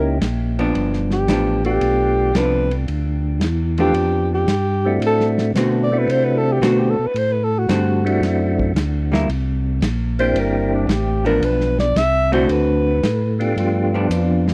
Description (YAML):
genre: soul jazz organ trio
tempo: 112 BPM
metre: 4/4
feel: swing 69% on 8ths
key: G mixolydian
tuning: A4 = 440 Hz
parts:
  - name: dark alto saxophone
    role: melody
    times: 0.0-13.4 s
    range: D4 to E5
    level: -22 LUFS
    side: equal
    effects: none
  - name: percussive tonewheel organ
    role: melody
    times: 0.0-14.5 s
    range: F3 to G4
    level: -26 LUFS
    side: equal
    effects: slow rotary speaker, tape echo
  - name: tonewheel organ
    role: bass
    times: 0.0-14.5 s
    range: G1 to C3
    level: -23 LUFS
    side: equal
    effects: overdrive, chorus vibrato, slow rotary speaker
  - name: warm soul drum kit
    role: drums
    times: 0.2-14.5 s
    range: hi-hat, kick drum, ride cymbal, snare drum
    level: -28 LUFS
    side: equal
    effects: none
  - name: vintage hollow-body jazz guitar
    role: accompaniment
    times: 0.6-14.5 s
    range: D3 to F#4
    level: -23 LUFS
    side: equal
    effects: none
room: little or no reverb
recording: dry, close 1970s-style studio recording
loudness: -18 LUFS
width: mono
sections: 0.0-13.6 A section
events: alto saxophone solo 0.0-13.6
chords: 0.0 C#dim7; 0.8 G7; 5.0 D7; 9.3 C7; 11.4 D13/B; 12.5 D7; 13.6 G7